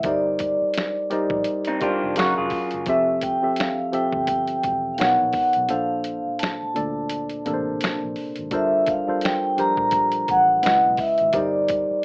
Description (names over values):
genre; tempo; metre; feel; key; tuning
R&B, neo-soul; 85 BPM; 4/4; swing 57% on 16ths; F major; A4 = 441 Hz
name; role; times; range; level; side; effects
vibraphone with soft mallets; melody; 0.0-12.0 s; D5 to Bb5; -21 LUFS; equal; none
tine electric piano; accompaniment; 0.0-12.0 s; Bb2 to G5; -25 LUFS; equal; none
vintage muted fingered electric bass; bass; 0.0-11.9 s; E1 to D2; -38 LUFS; equal; none
boom bap sampler-style drum kit; drums; 0.0-11.9 s; finger snaps, hi-hat, kick drum, snare drum; -28 LUFS; equal; none
electric guitar through a small old amp; second line; 1.7-2.9 s; C4 to Ab4; -24 LUFS; equal; spring reverb
room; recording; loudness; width
light reverb; rough home demo mix, AM radio sound; -19 LUFS; side -32 dB against mid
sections
0.0-12.0 A section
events
break 5.7-8.5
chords
0.0 Cm9/G; 2.2 Gbmaj9; 2.9 Fmaj9; 5.0 Bmaj9; 5.7 Bbmaj9; 8.5 Gm11; 10.6 Dbm9; 11.3 Cm9/G